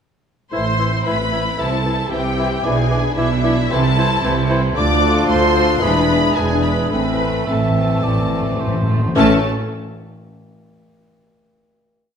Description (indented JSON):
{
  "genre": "quick classical-period movement for symphony orchestra",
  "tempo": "111 BPM",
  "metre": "4/4",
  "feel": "straight",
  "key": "A minor",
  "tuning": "A4 = 441 Hz",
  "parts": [
    { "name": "rich studio violin section", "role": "melody", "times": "0.5-9.5 s", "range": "E5 to D6", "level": "-23 LUFS", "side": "left 2 dB", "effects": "none" },
    { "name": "clear clarinet", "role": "second line", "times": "0.5-9.4 s", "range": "C4 to E4", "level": "-25 LUFS", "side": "left 3 dB", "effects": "none" },
    { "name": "mellow cor anglais", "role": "second line", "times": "0.5-9.4 s", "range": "G#4 to E5", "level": "-28 LUFS", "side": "right 2 dB", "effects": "none" },
    { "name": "clear studio viola section", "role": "accompaniment", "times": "0.5-9.5 s", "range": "E4 to D5", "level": "-25 LUFS", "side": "equal", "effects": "none" },
    { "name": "warm bassoon", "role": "accompaniment", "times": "0.5-9.4 s", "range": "E3 to F3", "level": "-25 LUFS", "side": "right 2 dB", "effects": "none" },
    { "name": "mellow French horn section", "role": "sustained chords", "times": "0.5-9.4 s", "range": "G#3 to F4", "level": "-24 LUFS", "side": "left 7 dB", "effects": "none" },
    { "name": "clear studio cello section", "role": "bass", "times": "0.5-9.5 s", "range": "D2 to C3", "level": "-23 LUFS", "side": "right 3 dB", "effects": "none" },
    { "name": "rich studio double bass section", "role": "bass", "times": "0.5-9.5 s", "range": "E1 to D2", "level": "-22 LUFS", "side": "right 3 dB", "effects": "none" },
    { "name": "rich studio violin section", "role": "second line", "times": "0.8-9.5 s", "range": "G#3 to F4", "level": "-27 LUFS", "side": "left 1 dB", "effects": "none" },
    { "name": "timpani", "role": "percussion", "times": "6.9-9.4 s", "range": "A2", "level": "-23 LUFS", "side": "left 2 dB", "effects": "none" }
  ],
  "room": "wet recital hall reverb, RT60 1.4 s",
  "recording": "none",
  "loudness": "-15 LUFS",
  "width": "side -7 dB against mid",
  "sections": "0.5-9.2 A section; 9.2-11.4 final chord",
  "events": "timpani fill 6.9-9.2",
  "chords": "0.5 Am; 1.6 C; 2.7 E7/B; 3.7 Am/C; 4.8 Dm; 5.8 E7; 6.9 Am; 9.2 A",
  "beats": "| 0.53 1.07 1.60 2.13 | 2.65 3.18 3.72 4.24 | 4.77 5.29 5.82 6.36 | 6.91 7.47 8.03 8.59 | 9.15"
}